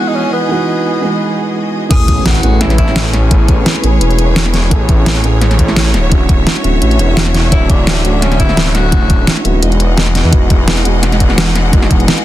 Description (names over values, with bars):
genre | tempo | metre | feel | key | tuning
liquid drum and bass | 171 BPM | 4/4 | swing 54% on 16ths | A major | A4 = 439 Hz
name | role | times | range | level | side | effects
clear tenor saxophone | melody | 0.0-3.8, 7.5-9.3 s | B3 to G#4 | -20 LUFS | left 2 dB | dub echo
felt-muted upright piano | accompaniment | 0.0-12.2 s | E3 to D#5 | -18 LUFS | right 3 dB | dub echo
rich studio string section | sustained chords | 0.0-12.2 s | E3 to F#5 | -21 LUFS | left 1 dB | none
swelling detuned saw bass | bass | 1.9-12.1 s | D1 to E2 | -13 LUFS | equal | none
electronic kick drum | drums | 1.9-12.0 s | none | -11 LUFS | equal | overdrive
pop drum kit | drums | 1.9-12.2 s | crash cymbal, hi-hat, snare drum | -15 LUFS | equal | overdrive
impact | sound effects | 1.9-3.3 s | none | -20 LUFS | left 1 dB | none
room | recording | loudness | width
little or no reverb | dense, heavily limited modern master | -9 LUFS | side -14 dB against mid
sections
0.0-1.9 A section; 1.9-12.2 B section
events
drop 1.9-12.2; impact 1.9-3.3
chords
0.0 Emaj9; 1.9 Amaj9; 5.9 Dmaj9; 9.6 Emaj9